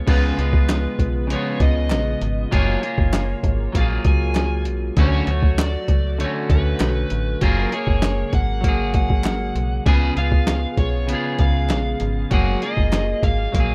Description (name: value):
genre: indie pop, bedroom pop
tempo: 98 BPM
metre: 4/4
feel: straight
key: F# major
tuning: A4 = 439 Hz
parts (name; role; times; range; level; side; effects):
- overdriven slide guitar; melody; 0.0-13.7 s; A#4 to G#5; -31 LUFS; equal; lush chorus, delay
- electric guitar at the edge of break-up; accompaniment; 0.0-13.7 s; C#3 to G#4; -27 LUFS; equal; lush chorus, warbly pitch drift
- phased analog pad; sustained chords; 0.9-13.7 s; C#3 to G#4; -36 LUFS; equal; none
- metallic FM bass; bass; 0.1-13.7 s; F#1 to D2; -24 LUFS; equal; none
- lo-fi sampler-style drum kit; drums; 0.1-13.7 s; crash cymbal, hi-hat, kick drum, snare drum; -22 LUFS; equal; overdrive
- group handclap; percussion; 0.7-13.1 s; none; -36 LUFS; equal; none
room: digital ambience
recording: rough home demo mix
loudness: -20 LUFS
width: mono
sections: 0.1-13.7 A section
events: none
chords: 0.1 C#7; 2.5 F#maj9; 5.0 Dmaj7; 7.4 F#maj9; 9.9 C#7; 12.3 F#maj9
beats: | 0.07 0.69 1.30 1.91 | 2.52 3.14 3.75 4.36 | 4.97 5.58 6.20 6.81 | 7.42 8.03 8.64 9.26 | 9.87 10.48 11.09 11.71 | 12.32 12.93 13.54